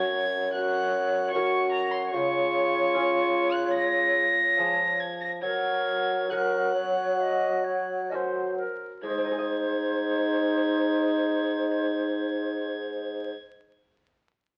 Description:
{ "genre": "classical, renaissance-style consort dance", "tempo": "64-76 BPM", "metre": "4/4", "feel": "straight", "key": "Ab mixolydian", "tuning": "A4 = 440 Hz", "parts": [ { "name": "wooden flute", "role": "melody", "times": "0.0-13.3 s", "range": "Bb4 to F5", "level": "-33 LUFS", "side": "equal", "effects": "none" }, { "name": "rich violin", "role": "second line", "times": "0.0-13.3 s", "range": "Bb5 to Bb6", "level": "-32 LUFS", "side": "equal", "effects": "none" }, { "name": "lute", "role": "accompaniment", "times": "0.0-13.7 s", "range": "Gb2 to Eb5", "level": "-38 LUFS", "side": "equal", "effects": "none" }, { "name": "mellow trombone", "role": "accompaniment", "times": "0.0-13.3 s", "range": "Eb4 to Gb4", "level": "-31 LUFS", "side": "equal", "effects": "none" }, { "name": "mellow bassoon", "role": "bass", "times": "0.0-13.3 s", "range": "Gb2 to Gb3", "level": "-33 LUFS", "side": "equal", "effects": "none" } ], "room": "moderate stone room reverb, RT60 1.1 s", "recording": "very old 78 rpm record, vinyl crackle", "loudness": "-26 LUFS", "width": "mono", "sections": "0.0-9.0 A section; 9.0-12.8 B section", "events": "slowing down 0.5-9.0", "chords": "0.0 Gb; 2.1 Db; 5.4 Gb; 9.0 Ab", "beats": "0.54 1.33 | 2.13 2.93 3.75 4.58 | 5.43 6.30 7.19 8.10 | 9.04 9.97 10.91 11.85" }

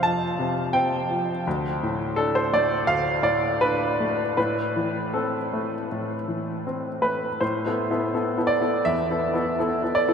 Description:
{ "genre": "neoclassical minimalist piano", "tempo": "78-85 BPM", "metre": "4/4", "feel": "rubato", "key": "A minor", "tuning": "A4 = 440 Hz", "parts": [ { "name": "bright baby grand piano", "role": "solo", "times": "0.0-10.1 s", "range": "D2 to A5", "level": "-22 LUFS", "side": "equal", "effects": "none" } ], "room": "wet huge ambient reverb, RT60 7.7 s", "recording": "in a vast, echoing space", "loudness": "-22 LUFS", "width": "side -6 dB against mid", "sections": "0.0-7.4 A section; 7.4-10.1 B section", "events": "none", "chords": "0.0 F; 1.5 D5; 4.4 Am; 7.4 Amadd9", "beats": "0.02 0.74 | 1.46 2.17 2.88 3.61 | 4.37 5.13 5.89 6.66 | 7.41 8.15 8.88 9.61" }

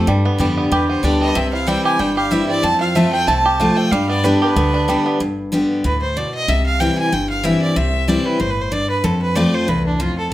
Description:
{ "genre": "bluegrass", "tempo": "187 BPM", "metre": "4/4", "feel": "swing 54% on 8ths", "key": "G mixolydian", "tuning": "A4 = 440 Hz", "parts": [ { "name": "clear fiddle", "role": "melody", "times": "0.0-10.3 s", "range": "D4 to A5", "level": "-21 LUFS", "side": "right 2 dB", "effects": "slapback echo" }, { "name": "picked steel-string acoustic guitar", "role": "accompaniment", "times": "0.0-10.3 s", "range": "E2 to G4", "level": "-18 LUFS", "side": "left 1 dB", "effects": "none" }, { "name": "bluegrass banjo", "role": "arpeggios", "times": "0.0-5.2 s", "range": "G3 to G4", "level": "-20 LUFS", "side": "right 2 dB", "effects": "none" }, { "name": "upright bass", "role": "bass", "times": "0.0-10.1 s", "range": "G1 to G2", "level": "-22 LUFS", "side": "equal", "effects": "none" } ], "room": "moderate studio reverb, RT60 0.8 s", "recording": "none", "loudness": "-15 LUFS", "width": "side -14 dB against mid", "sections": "0.0-5.2 A section; 5.2-10.3 A section", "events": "none", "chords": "0.1 G; 1.4 C; 2.6 F; 3.9 G; 6.5 C; 9.0 F", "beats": "| 0.08 0.40 0.72 1.04 | 1.36 1.68 2.00 2.32 | 2.64 2.96 3.28 3.60 | 3.92 4.24 4.56 4.88 | 5.20 5.52 5.84 6.17 | 6.49 6.80 7.13 7.45 | 7.77 8.09 8.41 8.73 | 9.04 9.37 9.68 10.00" }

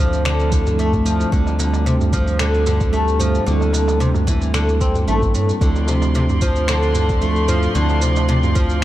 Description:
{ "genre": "organic downtempo", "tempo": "112 BPM", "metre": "4/4", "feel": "swing 54% on 16ths", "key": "D minor", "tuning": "A4 = 440 Hz", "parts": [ { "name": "mellow tine electric piano", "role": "accompaniment", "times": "0.0-8.8 s", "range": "F3 to G4", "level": "-24 LUFS", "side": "right 3 dB", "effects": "medium stereo tremolo, sidechain pumping, digital delay" }, { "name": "oud", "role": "arpeggios", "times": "0.0-8.8 s", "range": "A2 to C4", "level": "-21 LUFS", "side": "left 1 dB", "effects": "digital delay" }, { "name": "round analog bass", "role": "bass", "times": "0.0-8.8 s", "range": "A1 to G2", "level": "-19 LUFS", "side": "equal", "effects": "none" }, { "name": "bronze singing bowl", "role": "texture", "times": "0.0-8.8 s", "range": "A3 to A4", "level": "-37 LUFS", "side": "left 3 dB", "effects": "none" }, { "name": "electronic shaker and finger snaps", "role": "drums", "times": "0.1-8.8 s", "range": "none", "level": "-29 LUFS", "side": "right 1 dB", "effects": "none" }, { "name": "electronic kick drum", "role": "drums", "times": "0.5-8.7 s", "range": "none", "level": "-20 LUFS", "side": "equal", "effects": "none" }, { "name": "darbuka", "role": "percussion", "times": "0.7-8.7 s", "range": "none", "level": "-28 LUFS", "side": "equal", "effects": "none" }, { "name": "rich chamber string section", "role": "sustained chords", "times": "5.6-8.8 s", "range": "F3 to C6", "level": "-26 LUFS", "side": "right 2 dB", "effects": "sidechain pumping" } ], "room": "light reverb, small room ambience", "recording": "dark, warm production", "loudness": "-15 LUFS", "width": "side -14 dB against mid", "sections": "0.0-8.8 A section", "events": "none", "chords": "0.0 Dm7; 1.3 F6/D; 3.5 C7/D; 5.6 Dm7", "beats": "0.26 0.79 | 1.33 1.86 2.40 2.94 | 3.47 4.01 4.54 5.08 | 5.61 6.15 6.69 7.22 | 7.76 8.29 8.83" }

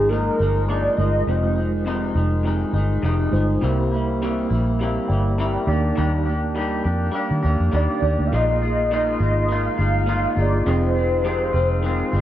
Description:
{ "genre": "indie pop", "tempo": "102 BPM", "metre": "4/4", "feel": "swing 55% on 16ths", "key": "F dorian", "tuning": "A4 = 435 Hz", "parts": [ { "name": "warm velvety synth lead", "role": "melody", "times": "0.0-1.6, 7.8-12.2 s", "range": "Bb4 to F5", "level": "-23 LUFS", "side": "equal", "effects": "ensemble chorus, plate reverb, analog delay" }, { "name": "electric guitar through a small old amp", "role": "accompaniment", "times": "0.0-12.2 s", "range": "F2 to G4", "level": "-25 LUFS", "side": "left 2 dB", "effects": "lush chorus, vibrato effect, plate reverb" }, { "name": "mellow tine electric piano", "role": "accompaniment", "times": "0.0-12.2 s", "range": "Ab3 to Bb5", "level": "-27 LUFS", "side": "right 3 dB", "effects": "medium stereo tremolo, cassette tape" }, { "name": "vintage muted fingered electric bass", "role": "bass", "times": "0.0-12.2 s", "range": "F1 to Eb3", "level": "-21 LUFS", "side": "equal", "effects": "none" } ], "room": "moderate small room reverb, RT60 0.6 s", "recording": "worn, warbling old tape, cassette tape, warbly pitch drift", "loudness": "-18 LUFS", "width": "side -12 dB against mid", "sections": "0.0-12.2 A section", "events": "none", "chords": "0.0 Bb7sus4; 1.3 Fm7; 3.6 C7; 5.7 Ebmaj7; 8.3 Bb7sus4; 10.7 Fm7", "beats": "0.11 0.69 | 1.28 1.87 2.45 3.04 | 3.63 4.21 4.80 5.39 | 5.97 6.56 7.15 7.73 | 8.32 8.91 9.49 10.08 | 10.67 11.25 11.84" }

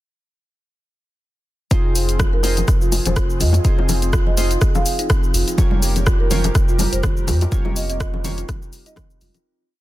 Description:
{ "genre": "afro house", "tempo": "124 BPM", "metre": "4/4", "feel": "swing 55% on 16ths", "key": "F minor", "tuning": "A4 = 442 Hz", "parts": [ { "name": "warm analog pad", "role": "sustained chords", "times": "1.7-9.4 s", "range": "F3 to Bb4", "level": "-32 LUFS", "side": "right 1 dB", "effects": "chorus, sidechain pumping" }, { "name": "kalimba", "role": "arpeggios", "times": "1.7-9.4 s", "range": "C4 to C5", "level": "-28 LUFS", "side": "equal", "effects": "sidechain pumping, dub echo" }, { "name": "warm analog keys", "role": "stabs", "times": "1.7-8.4 s", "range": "Bb3 to Db5", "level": "-31 LUFS", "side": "left 1 dB", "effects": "chorus, sidechain pumping, dub echo" }, { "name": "warm sub bass", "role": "bass", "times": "1.7-9.3 s", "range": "F1 to F2", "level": "-21 LUFS", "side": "equal", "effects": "sidechain pumping" }, { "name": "deep house drum kit", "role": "drums", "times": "1.7-9.4 s", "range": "hi-hat, rim click, shaker", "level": "-25 LUFS", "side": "left 1 dB", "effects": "soft clipping on snare" }, { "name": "electronic kick drum", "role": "drums", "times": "1.7-9.1 s", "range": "none", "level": "-19 LUFS", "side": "equal", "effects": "none" }, { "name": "bongos", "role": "percussion", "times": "1.7-9.4 s", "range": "none", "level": "-27 LUFS", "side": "left 5 dB", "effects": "none" }, { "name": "marimba with soft mallets", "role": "melody", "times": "2.3-9.3 s", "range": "Bb4 to F5", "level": "-29 LUFS", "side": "right 4 dB", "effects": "dub echo" }, { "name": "congas", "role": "percussion", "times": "5.6-9.3 s", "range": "none", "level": "-28 LUFS", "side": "right 5 dB", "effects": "none" } ], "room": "studio ambience", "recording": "dense, heavily limited modern master", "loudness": "-16 LUFS", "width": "side -16 dB against mid", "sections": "1.7-9.5 drop", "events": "drop 1.7-9.5; fade-out 6.9-9.5", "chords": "1.7 Fm7; 5.6 Gm7b5/F", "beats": "| 1.71 2.20 2.68 3.16 | 3.65 4.13 4.62 5.10 | 5.58 6.07 6.55 7.03 | 7.52 8.00 8.49 8.97" }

